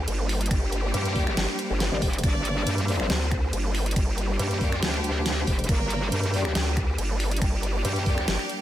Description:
heavy wobble dubstep; 139 BPM; 4/4; half-time; G minor; A4 = 436 Hz
supersaw chords; sustained chords; 0.0-8.6 s; G3 to D5; -34 LUFS; right 2 dB; sidechain pumping
vowel-sweep wobble bass; bass; 0.0-8.4 s; G1 to D2; -26 LUFS; equal; chorus, overdrive
dubstep drum kit; drums; 0.1-8.6 s; crash cymbal, finger snaps, hi-hat, snare drum; -31 LUFS; equal; overdrive
clear studio violin section; melody; 0.5-8.6 s; G3 to D5; -33 LUFS; left 1 dB; ping-pong delay
electronic kick drum; drums; 0.5-8.2 s; -25 LUFS; equal
metallic wobble bass; bass; 0.9-8.3 s; F1 to G2; -26 LUFS; equal; chorus, overdrive
mellow brass ensemble; stabs; 1.2-8.2 s; Bb3 to D5; -36 LUFS; left 4 dB; ping-pong delay
little or no reverb; -23 LUFS; side -12 dB against mid
0.0-8.6 A section
0.0 Gm

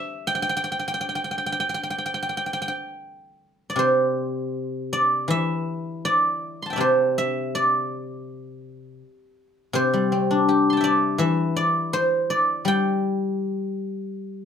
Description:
chinese traditional, Chinese solo plucked strings; 73-83 BPM; 4/4; rubato; G zhi mode; A4 = 440 Hz
guzheng; solo; 0.0-14.4 s; C3 to C6; -21 LUFS; equal
moderate studio reverb, RT60 0.7 s; -21 LUFS; side -7 dB against mid
0.0-3.8 A section; 3.8-14.4 B section

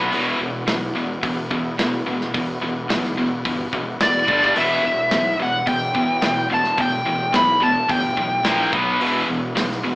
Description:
hard rock; 108 BPM; 4/4; straight; E minor; A4 = 440 Hz
overdriven tonewheel organ; sustained chords; 0.0-9.9 s; E3 to C5; -32 LUFS; equal
heavy high-gain guitar; riff; 0.0-9.9 s; E2 to B3; -24 LUFS; left 2 dB; distortion
tight distorted guitar; riff; 0.0-9.9 s; E2 to B3; -27 LUFS; right 2 dB; distortion
fuzz fingered electric bass; bass; 0.0-9.9 s; E1 to E2; -29 LUFS; equal; overdrive
tight metal drum kit; drums; 0.1-9.8 s; hi-hat, kick drum, snare drum; -26 LUFS; equal
smooth overdriven lead guitar; melody; 4.0-8.7 s; D5 to B5; -18 LUFS; equal
moderate large studio reverb, RT60 0.9 s; band playing live in one room, AM radio sound; -17 LUFS; side -21 dB against mid
0.0-9.9 A section
0.1 E5; 4.3 G5; 4.6 Em; 8.5 A#5; 8.7 B5; 9.0 E5

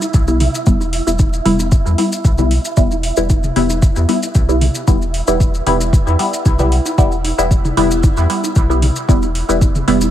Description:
dub techno; 114 BPM; 4/4; swing 53% on 16ths; E minor; A4 = 441 Hz
filtered dub chord stab; stabs; 0.0-10.1 s; G3 to E4; -17 LUFS; left 1 dB; phaser, sidechain pumping, dub echo
electronic congas and toms; percussion; 0.0-10.1 s; -24 LUFS; equal; overdrive, sidechain pumping on perc, sidechain pumping on toms, dub echo
maracas; percussion; 0.0-10.1 s; -27 LUFS; left 2 dB
wind-like tuned noise texture; texture; 0.0-10.1 s; E4; -27 LUFS; right 6 dB; built-in reverb, sidechain pumping
pure sine sub bass; bass; 0.1-10.1 s; E1 to E2; -18 LUFS; equal; tube saturation, sidechain pumping
electronic kick drum; drums; 0.1-9.7 s; -13 LUFS; equal
electronic hi-hat; drums; 0.4-10.0 s; -26 LUFS; equal
little or no reverb; vinyl crackle; -12 LUFS; side -11 dB against mid
0.0-10.1 A section
filter sweep on synth stab 0.0-10.1
0.0 Em

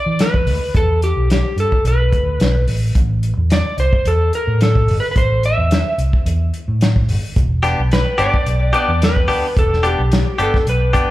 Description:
straight-eighth soul blues; 109 BPM; 4/4; swing 54% on 16ths; E minor; A4 = 439 Hz
electric slide guitar; melody; 0.0-11.1 s; G4 to E5; -20 LUFS; equal; slapback echo
vintage muted fingered electric bass; bass; 0.1-10.9 s; E1 to E3; -17 LUFS; equal
warm soul drum kit; drums; 0.2-11.1 s; hi-hat, kick drum, snare drum; -18 LUFS; equal
direct-recorded clean electric guitar; stabs; 7.6-11.1 s; B3 to G4; -19 LUFS; left 2 dB; slapback echo, tape echo
studio reverb; live gig heard through the venue's PA, club reverb; -14 LUFS; side -16 dB against mid
0.0-11.1 A section
0.0 E7(no3); 2.9 A5; 7.4 Em7

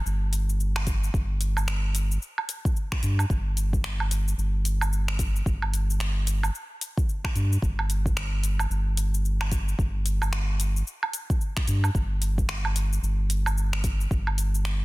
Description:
organic downtempo; 111 BPM; 4/4; swing 60% on 16ths; A4 = 440 Hz
warm sub bass; bass; 0.1-14.8 s; G1 to G2; -25 LUFS; equal; tube saturation
afro-pop drum kit; drums; 0.1-14.8 s; finger snaps, hi-hat, shaker, woodblock; -32 LUFS; right 1 dB; studio reverb, soft clipping on snare
electronic kick drum; drums; 0.9-14.2 s; -26 LUFS; equal; studio reverb
digital ambience; dense, heavily limited modern master; -24 LUFS; side -20 dB against mid
0.0-14.8 A section

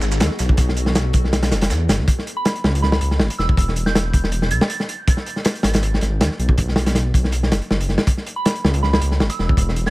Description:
drum and bass, jungle; 160 BPM; 4/4; swing 53% on 16ths; C# minor; A4 = 440 Hz
warbly tape-like pad; sustained chords; 0.0-2.1 s; B3 to A4; -32 LUFS; left 4 dB; chorus, built-in reverb, phaser, vintage 12-bit sampler grit
dark detuned saw bass; bass; 0.0-9.9 s; E1 to E2; -20 LUFS; equal; tube saturation
electronic snare drum and shaker; drums; 0.0-2.0 s; -30 LUFS; right 3 dB; overdrive, high-pass filter on perc, high-pass filter on hats, high-pass filter on snare, high-pass filter on room, analog delay
crunchy breakbeat drum kit; drums; 0.2-9.9 s; hi-hat, kick drum, snare drum; -18 LUFS; equal
soft synth bell; melody; 2.4-4.9, 8.4-9.9 s; B5 to A6; -28 LUFS; right 3 dB; chorus, dub echo
small room reverb; echo-heavy mix; -16 LUFS; side -20 dB against mid
0.0-2.1 A section; 2.1-9.9 A section
drop 0.0-2.1, 2.1-9.9
0.0 G#m7; 0.6 Bm7; 2.1 C#m; 3.6 E5; 5.1 G#m; 6.6 B5; 8.1 C#m

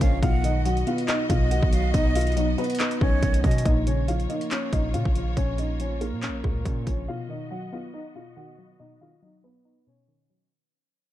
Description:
hip hop, trap; 140 BPM; 4/4; half-time; A4 = 440 Hz
dark grand piano; melody; 0.0-10.5 s; Bb3 to F#5; -30 LUFS; left 1 dB; low-pass filter, tape echo
breathy concert flute; second line; 0.0-3.6 s; Db5 to F#5; -34 LUFS; right 4 dB; tape echo
glassy wavetable pluck; accompaniment; 0.0-10.5 s; Bb2 to D#4; -30 LUFS; left 1 dB; chorus, low-pass filter
warm symphonic string section; sustained chords; 0.0-10.5 s; Bb3 to D#5; -37 LUFS; left 1 dB; low-pass filter
hard-hitting 808-style bass; bass; 0.0-7.1 s; Bb1 to B2; -26 LUFS; equal
trap drum kit; drums; 0.0-7.0 s; handclaps, hi-hat, kick drum; -25 LUFS; equal
small room reverb; dark, warm production; -22 LUFS; side -13 dB against mid
0.0-3.7 A section; 3.7-10.5 B section
fade-out 3.7-10.5; filter sweep 3.7-10.5
0.2 B; 3.7 Bbm; 7.1 B

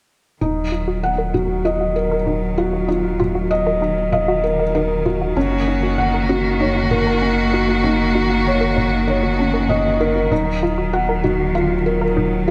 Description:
piano and strings electronica; 97 BPM; 4/4; straight; Eb minor; A4 = 440 Hz
warm string quartet; sustained chords; 0.4-12.5 s; Eb3 to Gb4; -23 LUFS; equal
analog pluck; arpeggios; 0.4-12.5 s; Db4 to Bb4; -28 LUFS; equal; chorus, phaser, vintage 12-bit sampler grit, digital delay
felt-muted upright piano; riff; 0.4-12.5 s; Db4 to Gb5; -22 LUFS; equal; digital delay
dark detuned saw bass; bass; 0.4-12.5 s; Eb1 to Gb1; -26 LUFS; equal
toms; drums; 0.4-12.3 s; -30 LUFS; equal; low-pass filter on toms, low-pass filter on snare, low-pass filter on room
wet recital hall reverb, RT60 1.3 s, small room ambience; -18 LUFS; mono
0.4-12.5 A section
filter sweep on synth arpeggio sound 0.4-12.5
0.4 Ebmadd9; 5.4 Gb6; 10.3 Ebmadd9

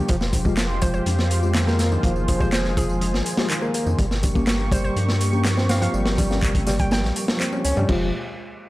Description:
breakbeat, breaks; 123 BPM; 4/4; straight; F minor; A4 = 440 Hz
lush unison pad; sustained chords; 0.0-8.1 s; Ab3 to Db6; -30 LUFS; equal; chorus, sidechain pumping
bright reed electric piano; riff; 0.0-8.1 s; Eb3 to G4; -26 LUFS; equal; fast tremolo, overdrive, tape echo
saturated sub bass; bass; 0.1-8.1 s; F1 to G2; -23 LUFS; equal; tube saturation
crunchy breakbeat drum kit; drums; 0.1-8.0 s; crash cymbal, hi-hat, kick drum, snare drum; -24 LUFS; equal
house drum kit; drums; 0.1-7.9 s; handclaps, hi-hat, tambourine; -31 LUFS; equal; overdrive
congas and bongos; percussion; 0.3-7.9 s; -34 LUFS; left 2 dB
mellow tine electric piano; stabs; 0.5-8.1 s; Ab3 to G4; -30 LUFS; left 4 dB; medium stereo tremolo, vintage 12-bit sampler grit, tape echo
hollow square pluck; melody; 0.8-7.4 s; Ab4 to G5; -32 LUFS; right 1 dB; chorus, telephone sound, tape echo
small room ambience; dry, gritty hardware recording, transformer saturation; -19 LUFS; side -18 dB against mid
0.0-7.9 A section
drop 0.0-7.9
0.1 Fmadd9; 4.0 Gdim; 7.9 Fmadd9

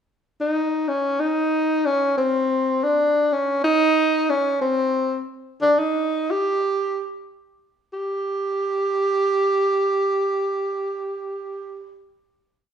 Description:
jazz; free time; A4 = 441 Hz
breathy tenor saxophone; solo; 0.4-12.0 s; C4 to G4; -20 LUFS; equal
wet large studio reverb, RT60 1.2 s; band playing live in one room; -19 LUFS; side -8 dB against mid
0.0-7.9 A section; 7.9-12.5 final note
slowing down 3.8-7.9

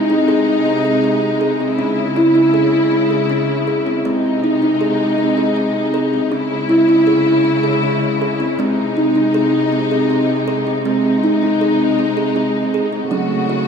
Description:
world meditative, meditative tuned percussion; 53 BPM (dotted quarters); 6/8; straight; A4 = 441 Hz
clear studio string section; sustained chords; 0.0-13.7 s; B#2 to F#4; -18 LUFS; equal; shimmer reverb
kalimba; arpeggios; 0.0-13.7 s; F#3 to G#4; -15 LUFS; equal; tape echo, shimmer reverb
wet plate reverb, RT60 2.5 s; dreamy mix soaked in reverb; -14 LUFS; side -6 dB against mid
0.0-13.1 A section
0.0 G#; 1.8 C#m; 4.1 G#; 6.3 C#m; 8.6 G#; 13.1 F#m

